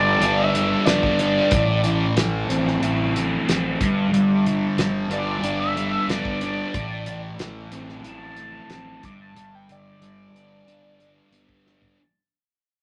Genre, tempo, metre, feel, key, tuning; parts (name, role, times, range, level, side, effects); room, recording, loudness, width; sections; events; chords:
psychedelic rock; 92 BPM; 4/4; straight; A4 = 441 Hz
overdriven synth lead; melody; 0.0-11.3 s; D5 to D6; -27 LUFS; equal; distortion, phaser
thick fuzz guitar; riff; 0.0-12.0 s; G2 to E4; -24 LUFS; equal; distortion, phaser
fuzz fingered electric bass; bass; 0.0-11.8 s; G1 to A1; -31 LUFS; equal; overdrive
damped 70s drum kit; drums; 0.2-12.0 s; hi-hat, kick drum, snare drum, toms; -27 LUFS; equal
wet small room reverb, RT60 0.5 s; -21 LUFS; mono
0.0-12.0 A section
fade-out 0.0-12.0; analog synth lead solo 0.0-12.0; drum fill 11.6-12.0
0.0 G; 1.5 Am; 3.8 G; 6.7 Am; 9.0 G